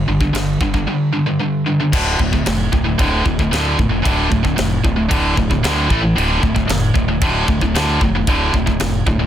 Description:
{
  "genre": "heavy metal",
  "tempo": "113 BPM",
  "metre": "4/4",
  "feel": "straight",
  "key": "D minor",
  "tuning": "A4 = 440 Hz",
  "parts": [
    { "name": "tight distorted guitar", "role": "riff", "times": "0.0-9.3 s", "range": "D2 to A3", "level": "-17 LUFS", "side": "equal", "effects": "distortion" },
    { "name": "fuzz fingered electric bass", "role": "bass", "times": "0.0-9.3 s", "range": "D1 to D2", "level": "-21 LUFS", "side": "equal", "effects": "overdrive" },
    { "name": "modern studio drum kit", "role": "drums", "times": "0.2-9.2 s", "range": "crash cymbal, kick drum, ride cymbal, snare drum", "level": "-20 LUFS", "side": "equal", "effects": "none" }
  ],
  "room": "little or no reverb",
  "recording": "dense, heavily limited modern master",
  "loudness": "-14 LUFS",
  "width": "side -10 dB against mid",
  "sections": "0.0-1.9 A section; 1.9-9.3 B section",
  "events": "none",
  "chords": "0.0 G5; 1.9 Dm; 5.9 A5; 6.2 Dm"
}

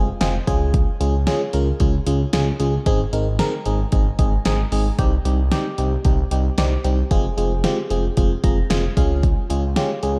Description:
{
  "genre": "synth-pop",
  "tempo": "113 BPM",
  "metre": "4/4",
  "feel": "straight",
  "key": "unclear",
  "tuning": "A4 = 439 Hz",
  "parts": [
    { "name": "FM electric piano", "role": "accompaniment", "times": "0.0-10.2 s", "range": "G3 to Bb5", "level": "-25 LUFS", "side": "equal", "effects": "chorus, phaser, shimmer reverb" },
    { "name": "smooth gliding synth bass", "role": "bass", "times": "0.0-10.2 s", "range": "F1 to Db2", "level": "-24 LUFS", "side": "equal", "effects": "none" },
    { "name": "deep house drum kit", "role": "drums", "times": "0.2-10.2 s", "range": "hi-hat, kick drum, snare drum", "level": "-23 LUFS", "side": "equal", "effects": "none" }
  ],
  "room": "light reverb, digital ambience",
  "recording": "dark, warm production",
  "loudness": "-20 LUFS",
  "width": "mono",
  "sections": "0.0-10.2 A section",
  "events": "FM electric piano fill 0.0-0.7, 8.2-9.2",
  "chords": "0.5 Db; 2.9 Ab; 5.0 Cm; 7.1 Fm; 9.0 Db"
}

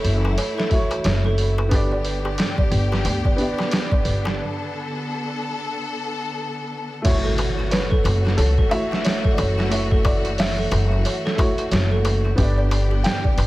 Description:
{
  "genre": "trip hop",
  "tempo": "90 BPM",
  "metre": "4/4",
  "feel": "swing 60% on 16ths",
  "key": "F# phrygian",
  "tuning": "A4 = 440 Hz",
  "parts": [
    { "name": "clear upright piano", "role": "accompaniment", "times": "0.0-13.5 s", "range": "A3 to E5", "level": "-29 LUFS", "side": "equal", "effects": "harmonic tremolo, tape echo" },
    { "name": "clear symphonic string section", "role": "sustained chords", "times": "0.0-13.5 s", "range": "D3 to A4", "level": "-29 LUFS", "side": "left 2 dB", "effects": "none" },
    { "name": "music box", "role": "arpeggios", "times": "0.0-13.5 s", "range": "E4 to G5", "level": "-28 LUFS", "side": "right 3 dB", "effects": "tape echo" },
    { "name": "upright bass", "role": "bass", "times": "0.0-13.5 s", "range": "F#1 to D2", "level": "-21 LUFS", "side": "equal", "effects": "none" },
    { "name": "trip hop sampler-style drum kit", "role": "drums", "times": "0.0-13.5 s", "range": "crash cymbal, hi-hat, kick drum, snare drum", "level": "-22 LUFS", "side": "equal", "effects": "none" },
    { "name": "darbuka", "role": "percussion", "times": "0.2-13.5 s", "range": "none", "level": "-33 LUFS", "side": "left 3 dB", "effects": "none" },
    { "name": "impact", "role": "sound effects", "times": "7.0-9.7 s", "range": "none", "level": "-27 LUFS", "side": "equal", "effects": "none" },
    { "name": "felt-muted upright piano", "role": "melody", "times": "7.7-13.5 s", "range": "A4 to G5", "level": "-28 LUFS", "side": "equal", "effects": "tape echo" }
  ],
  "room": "little or no reverb",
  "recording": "none",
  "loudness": "-18 LUFS",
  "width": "side -17 dB against mid",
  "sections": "0.0-7.0 A section; 7.0-13.5 B section",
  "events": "break 4.4-7.0; impact 7.0-9.7",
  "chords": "0.0 F#m7; 1.7 G; 7.0 F#m7; 12.4 G"
}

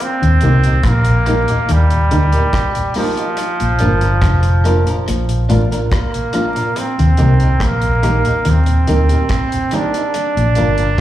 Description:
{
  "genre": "roots reggae",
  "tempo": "71 BPM",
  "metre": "4/4",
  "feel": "straight",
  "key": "unclear",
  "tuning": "A4 = 440 Hz",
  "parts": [
    { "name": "brilliant trombone", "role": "melody", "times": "0.0-11.0 s", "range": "F3 to D4", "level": "-18 LUFS", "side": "right 2 dB", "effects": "tape echo, slapback echo" },
    { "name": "deep reggae drum kit", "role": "drums", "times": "0.0-11.0 s", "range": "hi-hat, kick drum, rim click", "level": "-22 LUFS", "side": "equal", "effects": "tape echo" },
    { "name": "mellow tonewheel organ", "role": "accompaniment", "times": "0.2-10.9 s", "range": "Eb2 to Eb4", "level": "-23 LUFS", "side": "equal", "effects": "chorus vibrato, stopped rotary speaker, tape echo, slapback echo" },
    { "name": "mellow electric guitar", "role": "riff", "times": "0.2-10.8 s", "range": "F2 to Eb3", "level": "-20 LUFS", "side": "left 2 dB", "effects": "ensemble chorus" },
    { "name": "vintage muted fingered electric bass", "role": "bass", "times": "0.2-11.0 s", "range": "F1 to Eb2", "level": "-14 LUFS", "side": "equal", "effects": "none" },
    { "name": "electric guitar at the edge of break-up", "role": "accompaniment", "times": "0.4-10.9 s", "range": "Bb3 to Bb4", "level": "-27 LUFS", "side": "right 2 dB", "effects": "tape echo, slapback echo" },
    { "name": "warm upright piano", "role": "stabs", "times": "0.4-10.7 s", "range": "Bb3 to Bb4", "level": "-25 LUFS", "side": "left 1 dB", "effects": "slapback echo" }
  ],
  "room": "light reverb, small room ambience",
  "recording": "live gig heard through the venue's PA, club reverb, vinyl crackle",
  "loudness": "-12 LUFS",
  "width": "side -13 dB against mid",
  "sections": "0.0-11.0 A section",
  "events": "none",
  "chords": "0.0 Eb; 3.4 Bb; 6.8 Eb; 10.1 Bb"
}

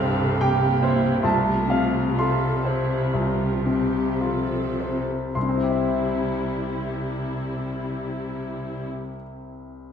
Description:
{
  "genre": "classical",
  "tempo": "49-78 BPM",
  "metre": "4/4",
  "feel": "rubato",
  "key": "C major",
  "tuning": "A4 = 441 Hz",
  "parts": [
    { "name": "bright baby grand piano", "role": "melody", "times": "0.0-9.9 s", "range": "C2 to C6", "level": "-24 LUFS", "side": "left 1 dB", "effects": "none" },
    { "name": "rich studio viola section", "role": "accompaniment", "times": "0.0-8.9 s", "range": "F3 to A4", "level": "-29 LUFS", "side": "right 3 dB", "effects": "none" },
    { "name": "warm studio cello section", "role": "bass", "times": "0.0-8.9 s", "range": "C3", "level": "-28 LUFS", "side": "equal", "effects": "none" }
  ],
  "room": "wet recital hall reverb, RT60 1.5 s",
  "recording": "recorded in a church or concert hall",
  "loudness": "-21 LUFS",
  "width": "side -8 dB against mid",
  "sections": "0.0-5.3 A section; 5.3-9.3 B section",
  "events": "slowing down 0.0-5.3",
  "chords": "0.0 C7; 1.2 F/C; 5.3 C"
}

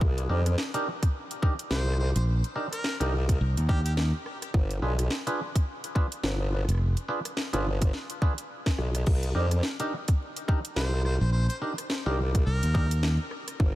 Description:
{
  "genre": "glitch hop",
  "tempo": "106 BPM",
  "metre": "4/4",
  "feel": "swing 58% on 16ths",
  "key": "C minor",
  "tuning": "A4 = 440 Hz",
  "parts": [
    { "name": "formant-sweep wobble bass", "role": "bass", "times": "0.0-13.8 s", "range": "G1 to F2", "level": "-26 LUFS", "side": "equal", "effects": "chorus" },
    { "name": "electronic kick drum", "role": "drums", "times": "0.0-13.7 s", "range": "none", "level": "-24 LUFS", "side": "equal", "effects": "overdrive" },
    { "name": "drum and bass drum kit", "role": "drums", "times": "0.2-13.6 s", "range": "crash cymbal, hi-hat, rim click, snare drum", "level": "-36 LUFS", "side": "equal", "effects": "overdrive" },
    { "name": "clav", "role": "stabs", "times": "0.3-12.9 s", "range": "D4 to B4", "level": "-35 LUFS", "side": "right 1 dB", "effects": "lush chorus, sidechain pumping, ping-pong delay" },
    { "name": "bright harmonica", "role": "melody", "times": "1.7-3.9, 10.8-13.0 s", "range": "G4 to C5", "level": "-38 LUFS", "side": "equal", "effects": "vintage 12-bit sampler grit, ping-pong delay" },
    { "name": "modern bright fingered electric bass", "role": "bass", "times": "2.2-6.9, 11.2-13.2 s", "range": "F1 to Eb2", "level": "-24 LUFS", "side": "equal", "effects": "none" }
  ],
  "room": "light reverb",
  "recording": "vinyl crackle",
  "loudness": "-25 LUFS",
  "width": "side -16 dB against mid",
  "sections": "0.0-13.8 A section",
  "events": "none",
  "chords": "0.0 Cm9; 4.5 G7b9; 9.1 Cm9"
}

